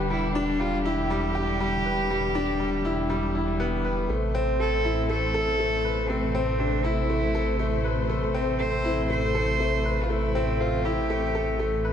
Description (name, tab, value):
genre	piano and strings electronica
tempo	120 BPM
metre	4/4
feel	straight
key	A minor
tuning	A4 = 437 Hz
part	muted studio string section	sustained chords	0.0-11.9 s	C3 to C5	-32 LUFS	equal	shimmer reverb
part	bright upright piano	riff	0.0-11.9 s	G3 to B4	-27 LUFS	left 2 dB	shimmer reverb, ping-pong delay
part	dark detuned saw bass	bass	0.0-11.9 s	E1 to A1	-29 LUFS	equal	none
part	rich cello	melody	0.1-11.8 s	C4 to C5	-30 LUFS	right 2 dB	shimmer reverb, ping-pong delay
room	light reverb, small room reverb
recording	none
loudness	-23 LUFS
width	side -8 dB against mid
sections	0.0-11.9 A section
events	none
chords	0.0 Em7; 4.1 Amadd9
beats	| 0.10 0.60 1.10 1.60 | 2.10 2.60 3.10 3.60 | 4.10 4.60 5.10 5.60 | 6.10 6.60 7.10 7.60 | 8.10 8.60 9.10 9.60 | 10.10 10.60 11.10 11.60